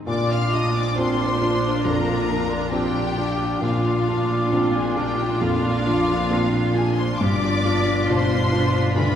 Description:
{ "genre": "cinematic, emotional film score for orchestra", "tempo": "68 BPM", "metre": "4/4", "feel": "rubato", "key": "Bb major", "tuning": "A4 = 440 Hz", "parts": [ { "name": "felt-muted upright piano", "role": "accompaniment", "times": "0.0-9.2 s", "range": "D2 to Ab4", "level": "-26 LUFS", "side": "equal", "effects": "none" }, { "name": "warm symphonic violin section", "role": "melody", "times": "0.1-9.2 s", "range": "F5 to F6", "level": "-29 LUFS", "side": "left 3 dB", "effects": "none" }, { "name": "clear clarinet", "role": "second line", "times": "0.1-9.2 s", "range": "F4", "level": "-29 LUFS", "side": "equal", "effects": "none" }, { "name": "mellow concert flute", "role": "second line", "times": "0.1-9.2 s", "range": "D6 to C7", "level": "-31 LUFS", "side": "left 2 dB", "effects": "none" }, { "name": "rich studio violin section", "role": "second line", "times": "0.1-9.2 s", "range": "F4 to F5", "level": "-30 LUFS", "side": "left 1 dB", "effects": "none" }, { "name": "rich symphonic viola section", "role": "accompaniment", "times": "0.1-9.2 s", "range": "D4 to F4", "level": "-29 LUFS", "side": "right 2 dB", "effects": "none" }, { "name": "dark French horn section", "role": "sustained chords", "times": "0.1-9.2 s", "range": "B2 to F4", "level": "-31 LUFS", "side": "right 1 dB", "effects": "none" }, { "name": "concert harp", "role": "arpeggios", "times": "0.1-9.2 s", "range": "G2 to D5", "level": "-28 LUFS", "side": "left 3 dB", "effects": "none" }, { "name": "clear symphonic cello section", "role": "bass", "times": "0.1-9.2 s", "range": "G2 to Bb2", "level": "-27 LUFS", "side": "right 1 dB", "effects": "none" }, { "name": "clear symphonic double bass section", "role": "bass", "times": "0.1-9.2 s", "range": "G1 to Bb1", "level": "-29 LUFS", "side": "right 2 dB", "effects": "none" } ], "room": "wet concert hall reverb, RT60 2.1 s", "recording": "heard from further back in the room", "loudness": "-19 LUFS", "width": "side -9 dB against mid", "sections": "0.1-9.2 A section", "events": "none", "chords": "0.1 Bbadd9; 7.2 G7" }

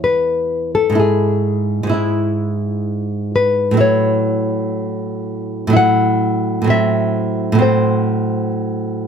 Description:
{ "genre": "romantic duo for nylon-string guitar and classical guitar", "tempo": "64 BPM", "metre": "3/4", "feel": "rubato", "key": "unclear", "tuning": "A4 = 439 Hz", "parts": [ { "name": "nylon-string guitar", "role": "melody", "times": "0.0-8.5 s", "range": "E4 to F#5", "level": "-18 LUFS", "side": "left 4 dB", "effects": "none" }, { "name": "nylon-string guitar", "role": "accompaniment", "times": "0.0-9.1 s", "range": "E2 to E4", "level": "-17 LUFS", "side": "right 2 dB", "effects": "none" } ], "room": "moderate studio reverb, RT60 0.9 s", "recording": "none", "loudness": "-15 LUFS", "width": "side -7 dB against mid", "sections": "0.0-9.1 A section", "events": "none", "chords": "0.0 E; 1.0 E/G#; 3.8 F#m7/A; 6.7 F#m7b5/A" }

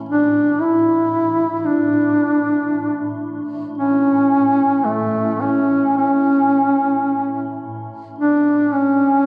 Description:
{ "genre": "caucasian folk, Caucasian lament", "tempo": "55 BPM", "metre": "3/4", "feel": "rubato", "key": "A major", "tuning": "A4 = 439 Hz", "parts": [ { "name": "granular cloud pad", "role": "drone", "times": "0.0-9.3 s", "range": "A2", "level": "-32 LUFS", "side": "equal", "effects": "built-in reverb" }, { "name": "dark duduk", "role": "melody", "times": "0.1-9.3 s", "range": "A3 to E4", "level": "-18 LUFS", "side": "equal", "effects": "none" } ], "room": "wet cathedral reverb, RT60 4.5 s", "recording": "recorded on a phone in the room, club reverb, compression, nothing above 10.5 kHz", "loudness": "-17 LUFS", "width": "mono", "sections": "0.0-9.3 A section", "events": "none", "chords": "none" }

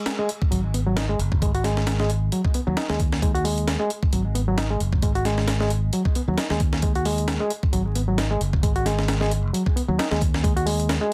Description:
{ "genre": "breakbeat, breaks", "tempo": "133 BPM", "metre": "4/4", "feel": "swing 56% on 16ths", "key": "G# minor", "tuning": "A4 = 440 Hz", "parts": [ { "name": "overdriven reed electric piano", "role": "riff", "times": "0.0-11.1 s", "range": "F#3 to F#4", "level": "-28 LUFS", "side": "equal", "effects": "tube saturation, vintage 12-bit sampler grit, tape echo" }, { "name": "breakbeat sampler-style drum kit", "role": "drums", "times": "0.1-11.0 s", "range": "hi-hat, kick drum, snare drum", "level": "-27 LUFS", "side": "equal", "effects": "small room ambience" }, { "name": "fingered electric bass", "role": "bass", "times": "0.5-11.0 s", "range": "F#1 to D#2", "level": "-26 LUFS", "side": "equal", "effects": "none" } ], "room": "light reverb", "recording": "dense, heavily limited modern master, vinyl crackle", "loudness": "-23 LUFS", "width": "mono", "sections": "0.0-11.1 A section", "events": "none", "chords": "0.0 G#5" }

